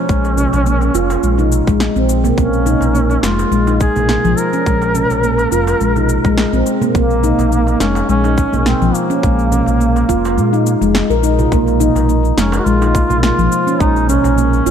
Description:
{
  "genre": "organic downtempo",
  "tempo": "105 BPM",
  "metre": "4/4",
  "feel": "swing 54% on 16ths",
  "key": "Bb minor",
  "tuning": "A4 = 441 Hz",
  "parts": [
    { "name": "warm duduk", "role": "melody", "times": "0.0-14.7 s", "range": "Bb3 to Bb4", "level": "-18 LUFS", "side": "equal", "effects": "digital delay" },
    { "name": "handpan", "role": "arpeggios", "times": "0.0-14.7 s", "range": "F3 to Bb4", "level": "-16 LUFS", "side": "equal", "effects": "digital delay" },
    { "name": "smooth synth bass", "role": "bass", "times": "0.1-14.7 s", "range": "F1 to Bb2", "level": "-17 LUFS", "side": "equal", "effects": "sidechain pumping" },
    { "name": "electronic cabasa and snare drum", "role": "drums", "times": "0.1-14.7 s", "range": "none", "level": "-22 LUFS", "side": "left 1 dB", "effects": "overdrive" },
    { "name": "electronic kick drum", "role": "drums", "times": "0.1-13.9 s", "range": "none", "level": "-16 LUFS", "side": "equal", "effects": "overdrive" },
    { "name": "darbuka", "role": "percussion", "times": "0.2-14.4 s", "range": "none", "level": "-26 LUFS", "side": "right 4 dB", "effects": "none" },
    { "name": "quartz singing bowl", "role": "texture", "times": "11.5-14.7 s", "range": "Bb3 to Bb4", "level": "-27 LUFS", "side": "right 2 dB", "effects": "none" }
  ],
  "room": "light reverb",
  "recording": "dark, warm production",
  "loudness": "-12 LUFS",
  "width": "side -8 dB against mid",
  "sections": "0.0-11.5 A section; 11.5-14.7 B section",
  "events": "kick drops out 10.4-11.5",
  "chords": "0.0 Bbm",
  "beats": "| 0.09 0.66 1.23 1.81 | 2.38 2.95 3.52 4.09 | 4.66 5.23 5.81 6.38 | 6.95 7.52 8.09 8.66 | 9.23 9.81 10.38 10.95 | 11.52 12.09 12.66 13.23 | 13.81 14.38"
}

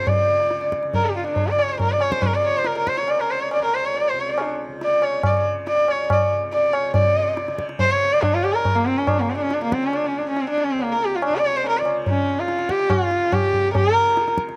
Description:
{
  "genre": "indian classical, Hindustani",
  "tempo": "140 BPM",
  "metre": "4/4",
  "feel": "straight",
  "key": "C# raga marwa",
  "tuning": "A4 = 444 Hz",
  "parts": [
    { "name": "rich sarangi", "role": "melody", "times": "0.0-14.3 s", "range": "A#3 to D5", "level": "-22 LUFS", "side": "equal", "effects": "slapback echo" },
    { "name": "tanpura", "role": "drone", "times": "0.0-14.6 s", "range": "C#2 to C#3", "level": "-38 LUFS", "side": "equal", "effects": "none" },
    { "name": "tabla", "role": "percussion", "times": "0.1-14.6 s", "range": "none", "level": "-27 LUFS", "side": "equal", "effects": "none" }
  ],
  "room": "little or no reverb",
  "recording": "recorded outdoors, with no room sound",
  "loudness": "-21 LUFS",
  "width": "mono",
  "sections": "0.0-7.0 A section; 7.0-14.6 B section",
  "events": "none",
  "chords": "none",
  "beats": "| 0.07 0.50 0.93 1.36 | 1.80 2.23 2.66 3.09 | 3.52 3.95 4.38 4.81 | 5.24 5.67 6.10 6.53 | 6.95 7.38 7.81 8.23 | 8.66 9.09 9.51 9.94 | 10.36 10.79 11.21 11.63 | 12.06 12.48 12.90 13.33 | 13.75 14.17"
}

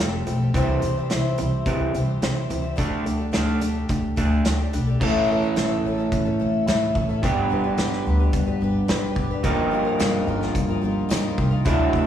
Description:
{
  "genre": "folk rock and heartland rock",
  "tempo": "108 BPM",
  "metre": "4/4",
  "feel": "straight",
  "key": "unclear",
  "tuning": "A4 = 441 Hz",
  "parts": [
    { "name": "picked twelve-string acoustic guitar", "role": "accompaniment", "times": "0.0-12.1 s", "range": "A2 to C5", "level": "-28 LUFS", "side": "left 5 dB", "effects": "none" },
    { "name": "electric guitar through a small old amp", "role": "riff", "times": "0.0-12.1 s", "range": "G2 to A4", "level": "-24 LUFS", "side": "right 2 dB", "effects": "none" },
    { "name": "upright bass", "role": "bass", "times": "0.0-12.1 s", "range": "F1 to C3", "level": "-26 LUFS", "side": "equal", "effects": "none" },
    { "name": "loose indie drum kit", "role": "drums", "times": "0.0-12.1 s", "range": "crash cymbal, hi-hat, kick drum, snare drum", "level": "-26 LUFS", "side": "equal", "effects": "none" },
    { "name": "mellow reed electric piano", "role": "accompaniment", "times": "5.0-12.1 s", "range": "E4 to D6", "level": "-35 LUFS", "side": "right 7 dB", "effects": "none" },
    { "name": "tambourine", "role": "percussion", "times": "10.0-11.2 s", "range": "none", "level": "-41 LUFS", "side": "left 6 dB", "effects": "none" }
  ],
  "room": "wet concert hall reverb, RT60 1.9 s",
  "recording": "recorded in a church or concert hall, small room ambience",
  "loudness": "-20 LUFS",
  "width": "side -10 dB against mid",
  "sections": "0.0-5.0 A section; 5.0-12.1 B section",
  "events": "reed electric piano fill 8.6-9.4",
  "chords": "0.0 Fadd9; 0.5 C; 2.8 Dsus4; 5.0 A; 7.2 G; 9.4 Ebadd9/G",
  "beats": "| 0.55 1.11 1.66 2.22 | 2.78 3.34 3.89 4.45 | 5.01 5.56 6.12 6.67 | 7.23 7.78 8.34 8.89 | 9.45 10.00 10.55 11.11 | 11.66"
}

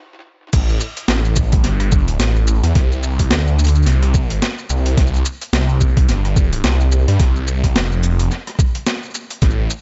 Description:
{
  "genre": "glitch hop",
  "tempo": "108 BPM",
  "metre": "4/4",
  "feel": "swing 58% on 16ths",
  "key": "A minor",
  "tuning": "A4 = 440 Hz",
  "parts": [
    { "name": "phased detuned saw bass", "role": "bass", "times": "0.5-9.7 s", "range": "F1 to G2", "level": "-18 LUFS", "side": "equal", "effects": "phaser, tube saturation" },
    { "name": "boom bap sampler-style drum kit", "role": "drums", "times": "0.5-9.8 s", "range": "crash cymbal, hi-hat, rim click, shaker, snare drum", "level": "-24 LUFS", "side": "equal", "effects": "overdrive, tape echo" },
    { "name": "electronic kick drum", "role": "drums", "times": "0.5-9.6 s", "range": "none", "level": "-18 LUFS", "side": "equal", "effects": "overdrive" }
  ],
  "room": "little or no reverb",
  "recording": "echo-heavy mix, high-pass filter, nothing above 7.8 kHz",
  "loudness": "-17 LUFS",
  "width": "mono",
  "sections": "0.5-9.8 A section",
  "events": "stop 0.0-0.5; drop 0.5-9.8",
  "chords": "none",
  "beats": "| 0.53 1.09 1.65 2.20 | 2.76 3.31 3.87 4.42 | 4.98 5.53 6.09 6.64 | 7.20 7.76 8.31 8.87 | 9.42"
}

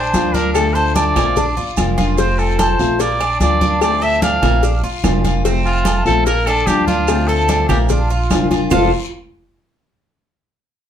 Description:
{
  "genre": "latin, Cuban son and guajira",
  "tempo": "147 BPM",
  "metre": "4/4",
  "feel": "straight",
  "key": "F major",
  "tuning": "A4 = 441 Hz",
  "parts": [
    { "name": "breathy trumpet", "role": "melody", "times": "0.0-8.9 s", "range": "F4 to F5", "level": "-19 LUFS", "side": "right 1 dB", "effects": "none" },
    { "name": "Cuban tres", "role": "arpeggios", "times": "0.0-8.9 s", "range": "Bb3 to F5", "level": "-21 LUFS", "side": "equal", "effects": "none" },
    { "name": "upright bass", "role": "bass", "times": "0.0-8.9 s", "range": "F1 to D2", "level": "-19 LUFS", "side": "right 1 dB", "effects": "none" },
    { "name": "picked plugged-in old ladder-braced acoustic guitar", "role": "accompaniment", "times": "0.1-8.9 s", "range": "F2 to F4", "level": "-21 LUFS", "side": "left 4 dB", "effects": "none" },
    { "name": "agogo bells and timbales", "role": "percussion", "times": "0.1-8.8 s", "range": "none", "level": "-26 LUFS", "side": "right 2 dB", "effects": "none" },
    { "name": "congas", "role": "percussion", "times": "0.1-8.8 s", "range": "none", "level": "-22 LUFS", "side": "right 1 dB", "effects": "none" },
    { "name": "cowbell and bongos", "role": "percussion", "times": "0.1-8.8 s", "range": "none", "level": "-24 LUFS", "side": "left 6 dB", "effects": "none" },
    { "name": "guiro", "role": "percussion", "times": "0.1-8.8 s", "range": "none", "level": "-32 LUFS", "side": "left 6 dB", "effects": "none" },
    { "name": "maracas", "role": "percussion", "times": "0.1-8.8 s", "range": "none", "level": "-33 LUFS", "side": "right 7 dB", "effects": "none" },
    { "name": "claves", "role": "percussion", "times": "0.6-8.8 s", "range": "none", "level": "-32 LUFS", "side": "right 7 dB", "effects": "none" }
  ],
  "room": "wet small room reverb, RT60 0.6 s",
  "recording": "heard from further back in the room",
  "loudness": "-13 LUFS",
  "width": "side -9 dB against mid",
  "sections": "0.0-8.7 A section; 8.7-10.3 B section",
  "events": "none",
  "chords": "0.0 Bb; 0.5 Dm7; 1.4 Bb; 2.2 F; 3.0 Bb; 3.8 Dm7; 4.6 Bb; 5.4 F; 6.3 Bb; 7.1 Dm7; 7.9 Bb; 8.7 F5",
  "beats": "0.14 | 0.55 0.96 1.37 1.77 | 2.18 2.59 3.00 3.41 | 3.82 4.22 4.63 5.04 | 5.45 5.86 6.26 6.67 | 7.08 7.49 7.90 8.30 | 8.71"
}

